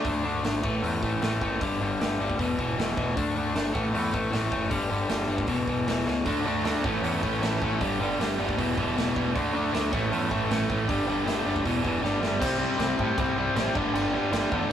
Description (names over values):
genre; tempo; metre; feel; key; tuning
punk rock; 155 BPM; 4/4; straight; D major; A4 = 440 Hz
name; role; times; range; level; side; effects
crunchy overdriven guitar; riff; 0.0-14.7 s; E2 to D4; -27 LUFS; left 3 dB; none
distorted electric guitar; riff; 0.0-0.1, 6.2-14.7 s; G2 to F#4; -30 LUFS; right 6 dB; distortion
growling picked electric bass; bass; 0.0-14.6 s; E1 to A2; -32 LUFS; right 1 dB; overdrive
raw garage drum kit; drums; 0.0-14.6 s; crash cymbal, hi-hat, kick drum, snare drum; -31 LUFS; equal; none
room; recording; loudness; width
moderate small room reverb, RT60 0.5 s; rough rehearsal-room recording; -24 LUFS; side -9 dB against mid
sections
0.1-12.4 A section; 12.4-14.7 B section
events
drum fill 6.1, 12.0-12.4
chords
0.1 D5; 0.6 A5; 1.6 G5; 2.4 E5; 3.2 D5; 3.7 A5; 4.7 G5; 5.5 E5; 6.3 D; 6.8 A; 7.8 G; 8.6 Em; 9.3 D; 9.9 A; 10.9 G; 11.7 Em; 12.0 G; 12.4 C; 13.8 G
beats
| 0.06 0.45 0.83 1.22 | 1.61 1.99 2.38 2.77 | 3.16 3.54 3.93 4.32 | 4.71 5.09 5.48 5.87 | 6.26 6.64 7.03 7.42 | 7.81 8.19 8.58 8.96 | 9.35 9.73 10.12 10.50 | 10.89 11.27 11.65 12.04 | 12.42 12.80 13.18 13.56 | 13.94 14.32 14.70